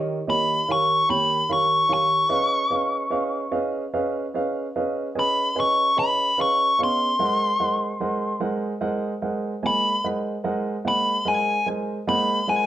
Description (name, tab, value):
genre	blues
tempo	49 BPM (dotted quarters)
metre	12/8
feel	straight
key	unclear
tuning	A4 = 441 Hz
part	warm grand piano	accompaniment	0.0-12.7 s	Eb3 to Ab5	-25 LUFS	right 2 dB	none
part	smooth overdriven lead guitar	melody	0.3-12.7 s	Ab5 to Db6	-20 LUFS	left 1 dB	none
room	wet large studio reverb, RT60 0.9 s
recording	band playing live in one room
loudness	-20 LUFS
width	side -13 dB against mid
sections	0.0-12.7 A section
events	lead electric guitar solo 0.0-12.7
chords	0.0 Eb9; 2.3 Db9; 7.2 Ab9